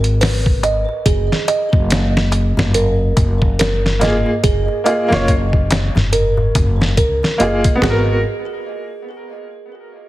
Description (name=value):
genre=trip hop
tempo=71 BPM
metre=4/4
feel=swing 59% on 16ths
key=unclear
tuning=A4 = 440 Hz
part: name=music box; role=arpeggios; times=0.0-8.2 s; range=G#4 to D#5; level=-21 LUFS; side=right 3 dB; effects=tape echo
part: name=upright bass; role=bass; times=0.0-8.2 s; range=F#1 to C#2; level=-17 LUFS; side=equal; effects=none
part: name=trip hop sampler-style drum kit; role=drums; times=0.0-8.1 s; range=hi-hat, kick drum, snare drum, toms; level=-17 LUFS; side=equal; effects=studio reverb
part: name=darbuka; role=percussion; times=0.0-7.8 s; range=none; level=-25 LUFS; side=left 2 dB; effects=none
part: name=bright upright piano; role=accompaniment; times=4.0-8.2 s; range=A#3 to C#5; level=-20 LUFS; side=equal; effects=tremolo, tape echo
room=light reverb, small room ambience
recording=heavily compressed radio sound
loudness=-13 LUFS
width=side -16 dB against mid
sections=0.0-7.8 A section; 7.8-10.1 B section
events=none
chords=0.0 G#m; 1.1 F#maj7; 7.8 G#m7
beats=0.21 | 1.06 1.90 2.75 3.59 | 4.44 5.28 6.13 6.97 | 7.82